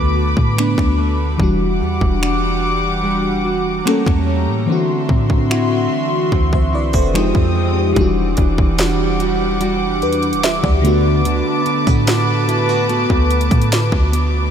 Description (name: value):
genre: contemporary R&B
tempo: 73 BPM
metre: 4/4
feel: straight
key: E minor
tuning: A4 = 439 Hz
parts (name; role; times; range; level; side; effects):
- FM electric piano with soft pad layer; accompaniment; 0.0-14.5 s; D3 to E5; -19 LUFS; left 2 dB; chorus, phaser
- warm studio string section; sustained chords; 0.0-14.5 s; G3 to Eb6; -22 LUFS; equal; sidechain pumping
- nylon-string guitar; arpeggios; 0.0-14.5 s; D3 to F#4; -23 LUFS; right 5 dB; lush chorus, analog delay
- clean 808-style bass; bass; 0.0-14.5 s; E1 to A2; -19 LUFS; equal; none
- trap drum kit; drums; 0.4-14.3 s; finger snaps, hi-hat, kick drum, snare drum; -20 LUFS; equal; overdrive
- swell; sound effects; 7.0-8.0 s; none; -34 LUFS; right 2 dB; none
room: moderate huge ambient reverb, RT60 8.8 s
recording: dreamy mix soaked in reverb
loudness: -14 LUFS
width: side -8 dB against mid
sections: 0.0-8.0 A section; 8.0-14.5 B section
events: swell 7.0-8.0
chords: 0.0 Bm7/D; 1.4 Em9; 3.9 A7b9; 4.7 D9; 7.1 Fm9; 8.0 Em9; 10.8 Bm7/D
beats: 0.57 | 1.39 2.21 3.04 3.86 | 4.68 5.50 6.32 7.14 | 7.97 8.79 9.61 10.43 | 11.25 12.08 12.90 13.72